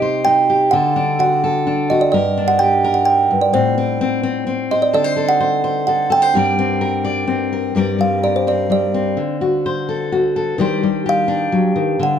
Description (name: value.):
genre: acoustic folk duo or small band.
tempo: 128 BPM.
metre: 3/4.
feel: straight.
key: G harmonic minor.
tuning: A4 = 440 Hz.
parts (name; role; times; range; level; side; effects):
kalimba; melody; 0.0-12.2 s; C5 to G5; -16 LUFS; right 3 dB; none.
fingerpicked steel-string acoustic guitar; accompaniment; 0.0-12.2 s; G2 to D5; -18 LUFS; left 3 dB; none.
room: light reverb.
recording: dark, warm production.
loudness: -14 LUFS.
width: side -8 dB against mid.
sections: 0.0-7.8 A section; 7.8-12.2 B section.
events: kalimba solo 7.8-12.2.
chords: 0.0 Cm; 0.7 D; 2.1 Gm; 3.5 Am; 4.9 D7; 6.3 Gm; 9.2 D7; 10.6 Cmadd9/Eb.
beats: 0.26 | 0.72 1.19 1.66 | 2.13 2.60 3.06 | 3.53 4.00 4.47 | 4.94 5.41 5.88 | 6.35 6.82 7.29 | 7.76 8.23 8.70 | 9.17 9.64 10.12 | 10.59 11.06 11.53 | 12.00.